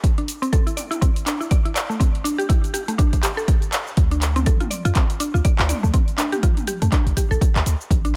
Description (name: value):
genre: afro house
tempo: 122 BPM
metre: 4/4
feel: swing 58% on 16ths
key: D minor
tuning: A4 = 440 Hz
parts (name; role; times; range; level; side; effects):
- deep house drum kit; drums; 0.0-8.1 s; handclaps, hi-hat, shaker, toms; -29 LUFS; equal; high-pass filter on hats, high-pass filter on perc, high-pass filter on toms, high-pass filter on snare, high-pass filter on room
- electronic kick drum; drums; 0.0-8.0 s; none; -21 LUFS; equal; none
- mallet-like synth pluck; arpeggios; 0.2-8.1 s; A3 to D5; -28 LUFS; equal; chorus, sidechain pumping, tape echo
- warm 808-style bass; bass; 4.0-8.2 s; A1 to F2; -22 LUFS; equal; sidechain pumping
room: little or no reverb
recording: none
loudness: -20 LUFS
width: mono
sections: 0.0-4.0 A section; 4.0-8.2 B section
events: build-up 0.0-4.0; drop 4.0-8.2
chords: 0.0 Am; 4.0 Dm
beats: | 0.04 0.53 1.02 1.51 | 2.01 2.50 2.99 3.48 | 3.97 4.46 4.96 5.45 | 5.94 6.43 6.92 7.42 | 7.91